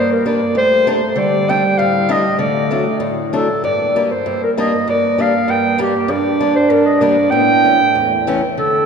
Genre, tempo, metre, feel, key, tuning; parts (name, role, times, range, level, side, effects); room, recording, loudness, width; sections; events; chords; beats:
alpine folk, alpine dance band; 98 BPM; 2/4; rubato; G minor; A4 = 438 Hz
mellow clarinet; melody; 0.0-8.9 s; G4 to G5; -15 LUFS; right 1 dB
mellow euphonium; second line; 0.0-8.5 s; G3 to D4; -18 LUFS; right 1 dB
fingerpicked steel-string acoustic guitar; accompaniment; 0.0-8.9 s; E2 to D4; -21 LUFS; left 4 dB
wet cathedral reverb, RT60 4.6 s; recorded in a church or concert hall; -13 LUFS; side -6 dB against mid
0.0-8.6 A section
0.0 Gm; 1.2 Dsus4; 2.4 D; 3.6 Gm; 7.3 A7
0.56 | 1.17 1.78 | 2.39 3.01 | 3.63 4.26 | 4.88 5.49 | 6.09 6.70 | 7.31 7.94 | 8.56